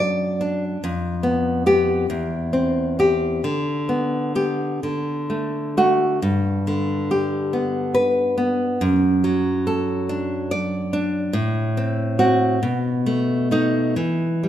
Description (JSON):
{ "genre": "romantic piece for solo classical guitar", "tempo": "42-49 BPM (dotted quarters)", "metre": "6/8", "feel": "rubato", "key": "G major", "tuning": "A4 = 440 Hz", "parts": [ { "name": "nylon-string guitar", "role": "solo", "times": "0.0-14.5 s", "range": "E2 to D5", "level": "-19 LUFS", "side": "equal", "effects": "none" } ], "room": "moderate scoring stage reverb, RT60 2.0 s", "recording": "minimal, uncompressed stereo recording", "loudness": "-19 LUFS", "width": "side -11 dB against mid", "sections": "0.0-14.5 A section", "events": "none", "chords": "0.0 D/F#; 0.8 G7/F; 2.1 C/E; 3.4 G/D; 4.8 D; 6.2 G; 8.8 D/F#; 11.4 F#dim/A; 12.6 B7; 14.0 N.C." }